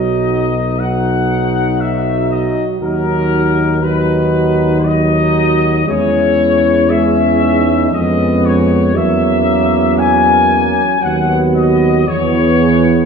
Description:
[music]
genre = classical, hymn-like piece for brass band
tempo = 58 BPM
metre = 3/4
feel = rubato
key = B major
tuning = A4 = 442 Hz
[part]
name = warm trumpet section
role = melody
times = 0.0-13.1 s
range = A#4 to G#5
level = -16 LUFS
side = left 6 dB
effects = none
[part]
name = clear French horn section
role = second line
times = 0.0-13.1 s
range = C#4 to G#4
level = -20 LUFS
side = right 6 dB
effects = none
[part]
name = bright trombone section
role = accompaniment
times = 0.0-13.1 s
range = A#3 to D#4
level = -19 LUFS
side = left 3 dB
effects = none
[part]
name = dark euphonium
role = accompaniment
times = 0.0-13.1 s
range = E3 to G#3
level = -19 LUFS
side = right 4 dB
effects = none
[part]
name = mellow tuba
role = bass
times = 0.0-13.1 s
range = B1 to E#2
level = -17 LUFS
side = right 1 dB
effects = none
[sound]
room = wet scoring stage reverb, RT60 1.5 s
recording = heard from further back in the room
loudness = -11 LUFS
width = side -6 dB against mid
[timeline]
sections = 0.0-13.1 A section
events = none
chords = 0.0 B; 2.8 B/D#; 5.9 C#m/E; 7.9 C#7/E#; 8.9 F#7/E; 11.0 B/D#; 12.1 E

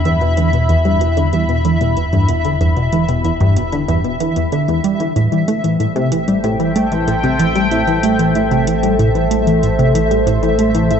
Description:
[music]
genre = ambient, sequencer-driven space music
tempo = 94 BPM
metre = 4/4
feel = straight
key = A minor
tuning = A4 = 439 Hz
[part]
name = sweeping resonant pad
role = sustained chords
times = 0.0-11.0 s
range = A3 to B5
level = -19 LUFS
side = equal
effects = chorus
[part]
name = fat analog bass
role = bass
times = 0.0-11.0 s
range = E1 to A1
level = -20 LUFS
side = equal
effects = none
[part]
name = pulsing gated texture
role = texture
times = 0.0-11.0 s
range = E5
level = -23 LUFS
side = left 1 dB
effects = chorus, built-in reverb
[part]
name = tight sequenced synth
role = riff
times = 0.1-11.0 s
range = E2 to A3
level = -15 LUFS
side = equal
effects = chorus, tape echo
[part]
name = electronic hi-hat and congas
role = percussion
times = 0.1-11.0 s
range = none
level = -32 LUFS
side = right 2 dB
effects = tape echo
[sound]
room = moderate plate reverb, RT60 2.9 s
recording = echo-heavy mix, nothing above 8.0 kHz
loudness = -13 LUFS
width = side -7 dB against mid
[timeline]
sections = 0.0-11.0 A section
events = none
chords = 0.0 Em; 5.2 Am7

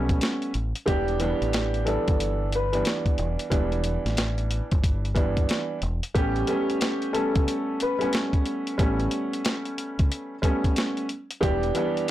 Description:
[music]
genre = hip hop, boom-bap hip-hop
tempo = 91 BPM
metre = 4/4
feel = swing 63% on 16ths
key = unclear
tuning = A4 = 440 Hz
[part]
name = dark upright piano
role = accompaniment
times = 0.0-12.1 s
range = E3 to D4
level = -27 LUFS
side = right 1 dB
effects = none
[part]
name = deep dub fingered electric bass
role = bass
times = 0.0-11.7 s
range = E1 to C#2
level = -28 LUFS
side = equal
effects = tube saturation
[part]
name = boom bap sampler-style drum kit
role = drums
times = 0.1-12.1 s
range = hi-hat, kick drum, snare drum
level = -25 LUFS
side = equal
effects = none
[part]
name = dark upright piano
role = melody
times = 0.9-12.1 s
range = G4 to B4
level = -28 LUFS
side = left 2 dB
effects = ping-pong delay
[sound]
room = light reverb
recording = blown-out, overdriven recording, overdrive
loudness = -23 LUFS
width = side -14 dB against mid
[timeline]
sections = 0.0-6.2 A section; 6.2-12.1 B section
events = none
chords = 0.0 A9; 0.9 Em7; 6.2 A9; 11.4 Em7

